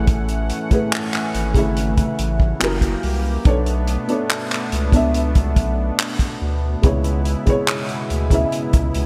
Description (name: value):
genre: contemporary R&B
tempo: 71 BPM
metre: 4/4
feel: straight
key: unclear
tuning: A4 = 440 Hz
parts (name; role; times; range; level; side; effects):
- felt-muted upright piano; accompaniment; 0.0-9.1 s; A2 to E5; -25 LUFS; equal; lush chorus
- warm analog pad; sustained chords; 0.0-9.1 s; B2 to F#5; -30 LUFS; equal; chorus, sidechain pumping
- saturated sub bass; bass; 0.0-9.1 s; F#1 to D2; -23 LUFS; equal; none
- warm soul drum kit; drums; 0.1-9.1 s; handclaps, hi-hat, kick drum; -22 LUFS; equal; gated reverb
room: light reverb, small room ambience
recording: bright 1980s-style digital production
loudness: -19 LUFS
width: mono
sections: 0.0-9.1 A section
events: none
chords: 0.0 F#m7/A; 2.6 F#7b9; 3.5 Bm9; 6.8 C#m7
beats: | 0.07 0.92 1.76 2.61 | 3.46 4.30 5.14 5.99 | 6.83 7.68 8.53